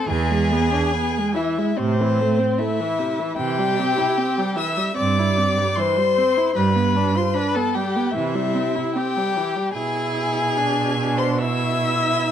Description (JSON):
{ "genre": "classical, slow romantic movement for string quartet", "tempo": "75 BPM", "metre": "4/4", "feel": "uneven beats, rubato", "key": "unclear", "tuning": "A4 = 436 Hz", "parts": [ { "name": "dark violin", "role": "melody", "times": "0.0-12.3 s", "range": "C5 to E6", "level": "-25 LUFS", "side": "left 7 dB", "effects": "none" }, { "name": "rich violin", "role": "second line", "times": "0.0-12.3 s", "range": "C4 to E5", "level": "-24 LUFS", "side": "left 2 dB", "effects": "none" }, { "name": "warm viola", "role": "accompaniment", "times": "0.0-12.3 s", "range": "C3 to F4", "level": "-25 LUFS", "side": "right 3 dB", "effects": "none" }, { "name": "rich cello", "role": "bass", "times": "0.1-12.3 s", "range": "E2 to C3", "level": "-24 LUFS", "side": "right 4 dB", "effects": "none" } ], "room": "light reverb", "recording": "dark, warm production", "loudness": "-18 LUFS", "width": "side -9 dB against mid", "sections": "0.0-12.3 A section", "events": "none", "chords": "0.1 E7; 1.8 Am; 3.4 C; 6.5 G7; 8.1 C; 9.7 E7/B", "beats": "| 0.07 0.92 1.76 2.58 | 3.38 4.17 4.97 5.77 | 6.55 7.34 8.13 8.93 | 9.73 10.54 11.38 12.21" }